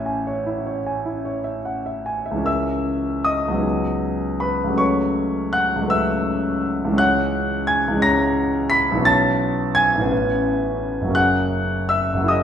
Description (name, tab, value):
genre	classical, impressionist solo piano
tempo	48-59 BPM (dotted quarters)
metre	6/8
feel	rubato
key	C# minor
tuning	A4 = 440 Hz
part	clear concert grand piano	solo	0.0-12.4 s	F#1 to B6	-18 LUFS	equal	none
room	wet recital hall reverb, RT60 1.4 s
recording	recorded in a church or concert hall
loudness	-18 LUFS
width	side -8 dB against mid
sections	0.0-2.5 A section; 2.5-12.4 B section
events	none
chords	0.0 Amaj7; 2.5 C#m6; 3.6 G#m7/C#; 4.8 B9sus4/C#; 7.0 C#m6; 9.1 B9sus4; 10.1 Amaj9; 11.2 F#add9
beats	| 0.05 1.25 | 2.46 3.64 | 4.80 5.91 | 7.00 8.04 | 9.07 10.12 | 11.17 12.30